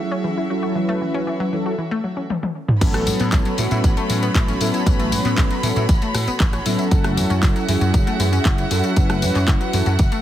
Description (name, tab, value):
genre	nu-disco, nu disco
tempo	117 BPM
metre	4/4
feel	straight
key	unclear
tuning	A4 = 444 Hz
part	mellow synth brass	accompaniment	0.0-10.0 s	F#3 to B4	-23 LUFS	equal	chorus, sidechain pumping, ping-pong delay
part	rich chamber violin section	sustained chords	0.0-10.2 s	A3 to B5	-28 LUFS	right 1 dB	sidechain pumping
part	analog pluck	arpeggios	0.0-10.2 s	E3 to F#4	-27 LUFS	left 3 dB	chorus, sidechain pumping, digital delay
part	house drum kit	drums	2.3-10.2 s	crash cymbal, handclaps, hi-hat, rim click, tambourine, toms	-25 LUFS	left 1 dB	low-pass filter on toms, low-pass filter on hats, low-pass filter on cymbals, low-pass filter on perc, low-pass filter on snare, low-pass filter on room
part	slap bass	bass	2.8-10.1 s	F#1 to A2	-22 LUFS	equal	none
part	electronic kick drum	drums	2.8-10.1 s	none	-18 LUFS	equal	none
room	light reverb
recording	heavily compressed radio sound, multiband compression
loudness	-17 LUFS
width	side -12 dB against mid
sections	0.0-2.8 A section; 2.8-10.2 B section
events	filter sweep on analog polysynth 0.0-2.8; drum fill 2.3-2.8; drop 2.8-10.2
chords	0.0 F#m7; 2.8 A69; 6.9 F#m7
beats	0.25 | 0.76 1.27 1.79 2.30 | 2.81 3.33 3.84 4.35 | 4.86 5.38 5.89 6.40 | 6.92 7.43 7.94 8.45 | 8.97 9.48 9.99